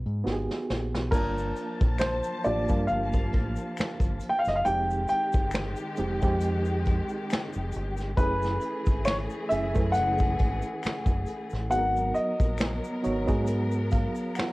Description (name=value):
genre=R&B, neo-soul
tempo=68 BPM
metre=4/4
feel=swing 55% on 16ths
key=unclear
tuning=A4 = 439 Hz
part: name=warm grand piano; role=melody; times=0.0-13.9 s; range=Bb4 to G5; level=-29 LUFS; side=equal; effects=cassette tape
part: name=barky reed electric piano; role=accompaniment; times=0.0-14.5 s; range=Ab3 to A5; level=-33 LUFS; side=right 2 dB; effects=overdrive, fast tremolo, cassette tape
part: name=deep dub fingered electric bass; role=bass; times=0.0-14.1 s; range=F1 to Ab2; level=-30 LUFS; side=equal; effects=none
part: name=vintage brush drum kit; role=drums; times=0.1-14.5 s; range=crash cymbal, finger snaps, hi-hat, kick drum, snare drum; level=-27 LUFS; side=equal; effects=cassette tape
part: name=rich studio string section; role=sustained chords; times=1.1-14.5 s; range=Eb3 to A5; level=-35 LUFS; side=left 1 dB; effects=cassette tape
part: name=tube shaker and finger snaps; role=percussion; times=1.1-14.5 s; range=none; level=-46 LUFS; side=left 5 dB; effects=none
room=light reverb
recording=home recording on cassette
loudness=-25 LUFS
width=side -20 dB against mid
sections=0.0-1.1 A section; 1.1-14.5 B section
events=drum fill 0.2-1.1; reed electric piano fill 13.5-14.5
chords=0.0 Abm9; 1.1 Gm9; 4.6 Fm9; 8.2 F#m9; 11.7 Abm9